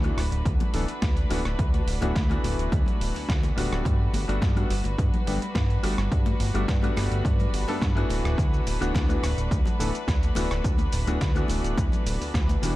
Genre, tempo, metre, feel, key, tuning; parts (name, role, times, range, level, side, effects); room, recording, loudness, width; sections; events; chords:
nu-disco, nu disco; 106 BPM; 4/4; straight; D major; A4 = 440 Hz
clear concert grand piano; accompaniment; 0.0-12.8 s; E3 to A4; -32 LUFS; left 2 dB; sidechain pumping, ping-pong delay
warm studio string section; sustained chords; 0.0-12.8 s; G3 to B4; -34 LUFS; equal; sidechain pumping
fat analog bass; bass; 0.0-12.7 s; D1 to G2; -27 LUFS; equal; tube saturation
dusty soul sampler-style drum kit; drums; 0.0-12.7 s; hi-hat, rim click, shaker, snare drum; -34 LUFS; right 1 dB; overdrive
congas; percussion; 0.0-12.6 s; -37 LUFS; left 4 dB
electronic kick drum; drums; 0.5-12.5 s; -26 LUFS; equal; overdrive
small room ambience; dark, warm production; -22 LUFS; side -16 dB against mid
0.0-12.8 A section
0.0 D6; 3.9 Gmaj7; 8.1 D6